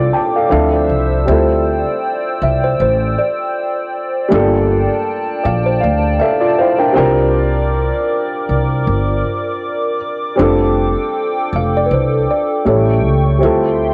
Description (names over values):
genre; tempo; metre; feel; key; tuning
lo-fi hip hop; 79 BPM; 4/4; swing 56% on 16ths; D minor; A4 = 440 Hz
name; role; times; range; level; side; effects
dark upright piano; accompaniment; 0.0-13.9 s; F3 to A5; -18 LUFS; equal; low-pass filter, cassette tape
hollow soft pad; sustained chords; 0.0-13.9 s; G4 to E6; -23 LUFS; equal; chorus, low-pass filter, cassette tape
upright bass; bass; 0.0-13.9 s; F1 to D2; -19 LUFS; equal; none
kalimba; melody; 2.4-6.9, 11.6-13.2 s; B4 to F5; -22 LUFS; equal; low-pass filter, cassette tape, tape echo
room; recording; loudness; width
light reverb; home recording on cassette; -15 LUFS; mono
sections
0.0-1.3 A section; 1.3-13.9 B section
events
upright piano fill 0.0-1.3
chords
0.0 F69; 0.5 Dm9; 1.3 Dm11; 4.3 Gm9; 7.0 C9sus4; 10.4 F69; 12.7 A7; 13.4 Dm11